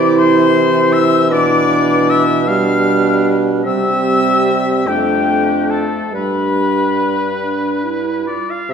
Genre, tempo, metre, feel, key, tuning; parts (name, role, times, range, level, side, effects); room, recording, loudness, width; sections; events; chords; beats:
classical, slow romantic movement for wind quintet; 46-54 BPM (dotted quarters); 6/8; rubato; A4 = 436 Hz
concert flute; melody; 0.0-8.7 s; G5 to F6; -19 LUFS; left 7 dB
clear oboe; second line; 0.0-8.7 s; G4 to F5; -21 LUFS; left 2 dB
clear clarinet; accompaniment; 0.0-8.7 s; C4 to F4; -18 LUFS; right 5 dB
warm French horn; accompaniment; 0.0-8.4 s; E3 to A3; -19 LUFS; equal
warm bassoon; bass; 0.0-8.7 s; F2 to C3; -18 LUFS; equal
wet recital hall reverb, RT60 1.6 s; heard from further back in the room; -12 LUFS; side -7 dB against mid
0.0-8.7 A section
0.0 C; 1.3 G7/B; 3.7 C; 4.9 Dm/F; 6.1 G
0.18 | 1.32 2.48 | 3.65 4.88 | 6.14 7.41 | 8.69